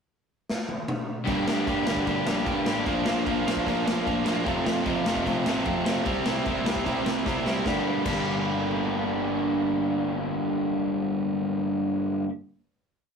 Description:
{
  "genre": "punk rock",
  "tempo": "151 BPM",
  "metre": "4/4",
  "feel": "straight",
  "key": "G dorian",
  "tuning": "A4 = 440 Hz",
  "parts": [
    { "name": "raw garage drum kit", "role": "drums", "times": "0.5-8.2 s", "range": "crash cymbal, kick drum, snare drum, toms", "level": "-30 LUFS", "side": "left 1 dB", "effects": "none" },
    { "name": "overdriven electric guitar", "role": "riff", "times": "1.2-12.3 s", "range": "F2 to G4", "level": "-28 LUFS", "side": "left 2 dB", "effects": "none" },
    { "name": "crunchy overdriven guitar", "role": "riff", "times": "1.3-12.3 s", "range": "F2 to C4", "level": "-30 LUFS", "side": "right 6 dB", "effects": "none" },
    { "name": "overdriven electric guitar", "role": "riff", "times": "1.3-12.3 s", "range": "F2 to E4", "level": "-31 LUFS", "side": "equal", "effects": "none" },
    { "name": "fuzz picked electric bass", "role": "bass", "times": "1.3-12.2 s", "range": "F1 to G2", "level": "-35 LUFS", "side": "equal", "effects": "overdrive" }
  ],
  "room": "moderate small room reverb, RT60 0.5 s",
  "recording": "rough rehearsal-room recording, warm saturation",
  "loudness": "-24 LUFS",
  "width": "side -6 dB against mid",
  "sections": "0.0-1.3 pickup bar; 1.3-7.7 riff; 7.7-10.8 final chord",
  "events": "drum fill 0.5-1.3, 7.3-7.7",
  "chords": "0.0 N.C.; 1.3 Gm; 2.9 Bb; 4.5 F; 6.1 C; 7.7 Gm"
}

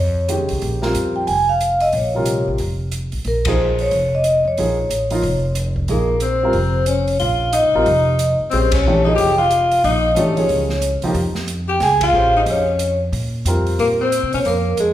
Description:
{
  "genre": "modal jazz",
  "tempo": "182 BPM",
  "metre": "4/4",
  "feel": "swing 62% on 8ths",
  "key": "Bb dorian",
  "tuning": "A4 = 440 Hz",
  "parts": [
    { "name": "vibraphone with soft mallets", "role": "melody", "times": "0.0-14.9 s", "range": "Ab4 to Ab5", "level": "-18 LUFS", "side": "equal", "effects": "none" },
    { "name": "upright bass", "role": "bass", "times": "0.0-14.9 s", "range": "F1 to C3", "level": "-21 LUFS", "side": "equal", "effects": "none" },
    { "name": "warm baby grand piano", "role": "accompaniment", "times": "0.3-14.0 s", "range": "C3 to C5", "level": "-22 LUFS", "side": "right 1 dB", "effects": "none" },
    { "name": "open jazz drum kit", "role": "drums", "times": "0.3-14.9 s", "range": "hi-hat, kick drum, ride cymbal, snare drum", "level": "-28 LUFS", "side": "right 1 dB", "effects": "none" },
    { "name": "growling alto saxophone", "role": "second line", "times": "5.9-14.9 s", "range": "Ab3 to Ab4", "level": "-22 LUFS", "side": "left 5 dB", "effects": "none" }
  ],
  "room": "moderate recital hall reverb, RT60 1.4 s",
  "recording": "recorded in a church or concert hall",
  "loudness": "-15 LUFS",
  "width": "side -12 dB against mid",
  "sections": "0.0-14.9 A section",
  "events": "band accent 3.4, 8.7, 12.0",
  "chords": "0.0 Bbm9"
}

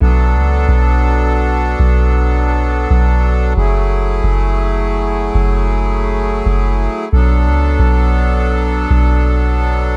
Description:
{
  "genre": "hip hop",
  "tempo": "135 BPM",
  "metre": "4/4",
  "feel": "half-time",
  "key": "B dorian",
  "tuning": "A4 = 440 Hz",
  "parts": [
    { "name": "accordion", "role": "sustained chords", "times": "0.0-10.0 s", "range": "F#3 to A4", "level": "-20 LUFS", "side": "equal", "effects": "none" },
    { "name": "soft 808-style bass", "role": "bass", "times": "0.0-10.0 s", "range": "F#1 to C#2", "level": "-15 LUFS", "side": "equal", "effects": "none" }
  ],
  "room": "little or no reverb",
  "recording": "echo-heavy mix, tape stop",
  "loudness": "-14 LUFS",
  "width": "mono",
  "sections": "0.0-10.0 A section",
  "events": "none",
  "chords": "0.0 Bm7; 3.6 F#m9; 7.1 Bm7"
}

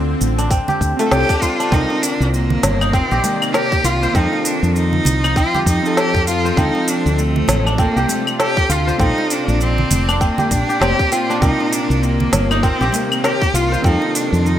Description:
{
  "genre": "organic downtempo",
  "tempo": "99 BPM",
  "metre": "4/4",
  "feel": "swing 59% on 16ths",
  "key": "C dorian",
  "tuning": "A4 = 440 Hz",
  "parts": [
    { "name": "mellow electric guitar", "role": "accompaniment", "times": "0.0-14.6 s", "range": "C4 to Bb4", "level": "-25 LUFS", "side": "right 3 dB", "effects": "sidechain pumping, digital delay" },
    { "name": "bowed-like drone", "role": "sustained chords", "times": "0.0-14.6 s", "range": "Bb2 to Eb5", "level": "-26 LUFS", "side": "left 2 dB", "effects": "built-in reverb, sidechain pumping" },
    { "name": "kora", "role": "arpeggios", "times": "0.0-14.6 s", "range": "A3 to C5", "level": "-22 LUFS", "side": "left 1 dB", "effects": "digital delay" },
    { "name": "woody fretless electric bass", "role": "bass", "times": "0.0-14.6 s", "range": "F1 to F2", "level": "-18 LUFS", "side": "equal", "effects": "sidechain pumping" },
    { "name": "organic electronic drum kit", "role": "drums", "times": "0.2-14.6 s", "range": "cabasa, claves, hi-hat, snare drum", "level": "-22 LUFS", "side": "left 1 dB", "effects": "gated reverb" },
    { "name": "electronic kick drum", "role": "drums", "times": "0.5-14.0 s", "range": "none", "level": "-18 LUFS", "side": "equal", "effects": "none" },
    { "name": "congas and bongos", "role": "percussion", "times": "0.5-14.1 s", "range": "none", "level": "-26 LUFS", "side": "right 3 dB", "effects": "none" },
    { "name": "rich cello", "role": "melody", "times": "1.1-14.6 s", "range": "A3 to A4", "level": "-20 LUFS", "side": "equal", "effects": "digital delay" }
  ],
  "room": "light reverb, digital ambience",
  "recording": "bright 1980s-style digital production",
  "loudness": "-14 LUFS",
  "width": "side -11 dB against mid",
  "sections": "0.0-1.7 A section; 1.7-14.6 B section",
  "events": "none",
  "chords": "0.0 Dm7; 1.7 Cm9; 4.1 F7; 6.6 Dm7; 9.0 Bbmaj7; 11.4 Cm9; 13.8 F7"
}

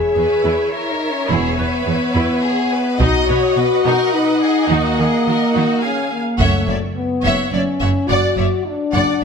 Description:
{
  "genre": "cinematic, epic orchestral film score",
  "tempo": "106 BPM",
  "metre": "3/4",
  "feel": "straight",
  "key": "unclear",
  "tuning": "A4 = 441 Hz",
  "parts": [
    { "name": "warm symphonic violin section", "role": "melody", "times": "0.0-9.2 s", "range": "E5 to Ab5", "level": "-28 LUFS", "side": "left 2 dB", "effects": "none" },
    { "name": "rich symphonic viola section", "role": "accompaniment", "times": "0.0-9.2 s", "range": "D#4 to F5", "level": "-24 LUFS", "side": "right 2 dB", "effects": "none" },
    { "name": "mellow French horn section", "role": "sustained chords", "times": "0.0-9.2 s", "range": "A3 to G#4", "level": "-18 LUFS", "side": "left 2 dB", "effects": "none" },
    { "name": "warm symphonic violin section", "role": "second line", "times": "0.2-9.2 s", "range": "Gb4 to E5", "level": "-23 LUFS", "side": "left 1 dB", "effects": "none" },
    { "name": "clear symphonic cello section", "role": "bass", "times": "0.2-9.0 s", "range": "E2 to Eb3", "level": "-23 LUFS", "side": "right 3 dB", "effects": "none" },
    { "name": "rich symphonic double bass section", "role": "bass", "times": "1.3-9.0 s", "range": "E1 to Eb2", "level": "-23 LUFS", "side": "right 4 dB", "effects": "none" },
    { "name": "taiko ensemble", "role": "drums", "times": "3.0-7.5 s", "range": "none", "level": "-22 LUFS", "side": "equal", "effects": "none" },
    { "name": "timpani", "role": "percussion", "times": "6.4-7.2 s", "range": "F#2", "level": "-26 LUFS", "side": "right 1 dB", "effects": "none" }
  ],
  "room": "moderate scoring stage reverb, RT60 1.7 s",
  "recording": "none",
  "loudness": "-15 LUFS",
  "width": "side -6 dB against mid",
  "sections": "0.0-6.4 A section; 6.4-9.2 B section",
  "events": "none",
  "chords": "0.0 E6; 3.0 B; 4.7 Ebm; 5.8 Db; 6.4 F#m7"
}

